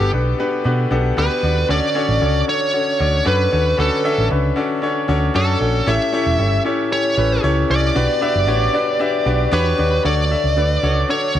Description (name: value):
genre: 1980s-style pop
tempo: 115 BPM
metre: 4/4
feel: straight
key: D major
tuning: A4 = 443 Hz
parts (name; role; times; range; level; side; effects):
- smooth overdriven lead guitar; melody; 0.0-11.4 s; A4 to E5; -20 LUFS; right 1 dB; none
- clear grand piano; accompaniment; 0.0-11.4 s; A2 to E5; -20 LUFS; left 2 dB; none
- hollow-body short-scale picked electric bass; bass; 0.0-11.4 s; E1 to B2; -19 LUFS; right 1 dB; none
room: light reverb, small room ambience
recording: none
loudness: -15 LUFS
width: side -11 dB against mid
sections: 0.0-10.0 A section; 10.0-11.4 B section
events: none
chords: 0.0 Gmaj7; 1.7 Dmaj7; 5.9 A7; 8.0 Gmaj7; 10.0 Dmaj7